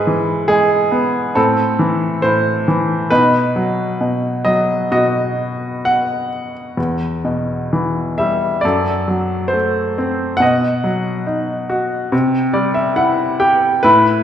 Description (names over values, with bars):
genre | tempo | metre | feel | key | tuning
classical, lyrical solo piano | 64-71 BPM | 4/4 | rubato | unclear | A4 = 440 Hz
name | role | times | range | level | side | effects
bright upright piano | solo | 0.0-14.2 s | E2 to G5 | -14 LUFS | equal | none
room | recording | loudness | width
wet recital hall reverb, RT60 1.4 s | heard from further back in the room | -14 LUFS | side -9 dB against mid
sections
0.0-14.2 A section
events
upright piano fill 12.1-13.8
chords
0.0 E/G#; 1.3 Am; 3.1 B; 6.8 Em; 8.6 F#dim; 10.4 B; 12.1 C